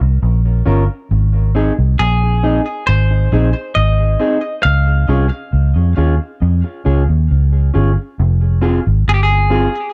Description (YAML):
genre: roots reggae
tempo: 68 BPM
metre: 4/4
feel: straight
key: F minor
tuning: A4 = 440 Hz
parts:
  - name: vintage muted fingered electric bass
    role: bass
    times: 0.0-9.7 s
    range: F1 to F2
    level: -15 LUFS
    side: equal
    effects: none
  - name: mellow electric guitar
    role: accompaniment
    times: 0.7-9.7 s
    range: C4 to Bb4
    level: -23 LUFS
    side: equal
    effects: tape echo, plate reverb
  - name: semi-hollow electric guitar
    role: melody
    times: 2.0-9.9 s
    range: G4 to F5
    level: -21 LUFS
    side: equal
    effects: tape echo
room: little or no reverb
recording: dark, warm production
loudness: -15 LUFS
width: mono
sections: 0.0-8.2 A section; 8.2-9.9 A section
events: none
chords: 0.0 Bbm; 1.1 Ab; 4.6 Db; 8.2 Fm